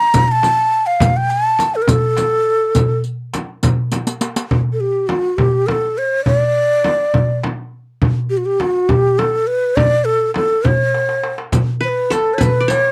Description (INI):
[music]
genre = Arabic maqam ensemble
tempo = 68 BPM (dotted quarters)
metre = 6/8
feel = straight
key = D maqam rast from 4.5 s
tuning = A4 = 441 Hz
[part]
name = breathy mellow ney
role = melody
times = 0.0-12.9 s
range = F4+50c to Bb5+23c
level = -17 LUFS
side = equal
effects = none
[part]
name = darbuka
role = percussion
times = 0.1-12.8 s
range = none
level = -21 LUFS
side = equal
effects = none
[part]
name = frame drum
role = percussion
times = 0.1-12.8 s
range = none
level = -24 LUFS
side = equal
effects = none
[part]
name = riq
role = percussion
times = 0.1-4.5, 11.5-12.8 s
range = none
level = -26 LUFS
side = equal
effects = none
[part]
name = qanun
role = second line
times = 11.8-12.9 s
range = A4 to D5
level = -22 LUFS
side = equal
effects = none
[sound]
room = light reverb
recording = dry, close 1970s-style studio recording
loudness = -16 LUFS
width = mono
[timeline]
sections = 0.0-4.5 A section; 4.5-12.9 B section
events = drum fill 3.9-4.5, 10.9-11.5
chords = none